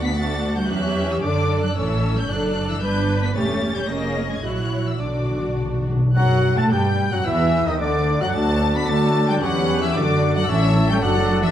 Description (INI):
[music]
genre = quick classical-period movement for symphony orchestra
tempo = 112 BPM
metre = 2/4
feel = rubato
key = unclear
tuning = A4 = 443 Hz
[part]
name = rich chamber violin section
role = melody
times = 0.0-11.5 s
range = D6 to B6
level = -30 LUFS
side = left 3 dB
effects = none
[part]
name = rich chamber violin section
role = second line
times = 0.0-11.5 s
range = B4 to B5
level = -31 LUFS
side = left 4 dB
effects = none
[part]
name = warm studio viola section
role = accompaniment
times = 0.0-11.5 s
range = D3 to C#5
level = -26 LUFS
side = right 1 dB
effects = none
[part]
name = rich chamber double bass section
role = bass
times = 0.0-11.5 s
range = E1 to D3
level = -24 LUFS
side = right 2 dB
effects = none
[part]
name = warm symphonic cello section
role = bass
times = 0.0-11.5 s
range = D3 to B3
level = -25 LUFS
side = right 1 dB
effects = none
[part]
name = timpani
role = percussion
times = 5.0-6.1 s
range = B2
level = -21 LUFS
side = equal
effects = none
[part]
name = hollow flute section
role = second line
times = 6.2-11.5 s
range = D5 to B5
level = -29 LUFS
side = left 1 dB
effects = none
[part]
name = mellow oboe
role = second line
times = 6.2-11.5 s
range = C#5 to A5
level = -30 LUFS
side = equal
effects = none
[part]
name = warm clarinet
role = second line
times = 6.2-11.5 s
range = D4 to A4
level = -28 LUFS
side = left 1 dB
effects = none
[part]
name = mellow French horn section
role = sustained chords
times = 6.2-11.5 s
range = D3 to D4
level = -27 LUFS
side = left 3 dB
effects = none
[part]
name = dark trumpet section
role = stabs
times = 6.2-11.5 s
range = F#4 to A5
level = -27 LUFS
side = equal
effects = none
[sound]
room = wet scoring stage reverb, RT60 1.5 s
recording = dark, warm production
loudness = -18 LUFS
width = side -10 dB against mid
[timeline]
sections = 0.0-6.2 A section; 6.2-11.5 B section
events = timpani fill 5.0-6.2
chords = 0.0 D; 0.7 C#dim/E; 1.2 D/F#; 1.8 A; 2.3 D/F#; 2.8 G; 3.4 C#dim/E; 3.9 C#/E#; 4.4 F#7/A#; 5.0 Bm; 6.2 F#m; 7.3 N.C.; 7.8 D; 9.4 C#dim/E; 10.0 D/F#; 10.5 A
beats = 0.16 | 0.69 1.23 | 1.76 2.29 | 2.82 3.36 | 3.89 4.44 | 5.01 5.59 | 6.16 6.71 | 7.26 7.80 | 8.35 8.89 | 9.43 9.96 | 10.50 11.03